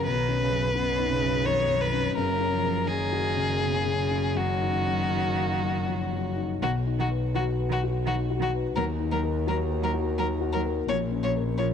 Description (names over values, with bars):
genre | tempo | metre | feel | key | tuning
neoclassical piano and strings | 78-86 BPM | 3/4 | rubato | unclear | A4 = 441 Hz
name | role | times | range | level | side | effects
rich violin | melody | 0.0-11.7 s | F#4 to C#5 | -28 LUFS | left 2 dB | none
rich cello | second line | 0.0-11.7 s | B2 to F#3 | -33 LUFS | right 14 dB | none
felt-muted upright piano | accompaniment | 0.0-11.7 s | B1 to E#5 | -30 LUFS | left 9 dB | none
rich double bass | bass | 0.0-11.7 s | F#1 to D#2 | -30 LUFS | right 2 dB | none
room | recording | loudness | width
light reverb, small room ambience | 1960s-style stereo with parts hard left and right | -24 LUFS | side -8 dB against mid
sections
0.0-6.6 A section; 6.6-11.7 B section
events
none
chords
0.1 Badd9; 2.2 F#; 4.4 D#madd9/F#; 6.6 B; 8.8 D#m; 10.9 A#m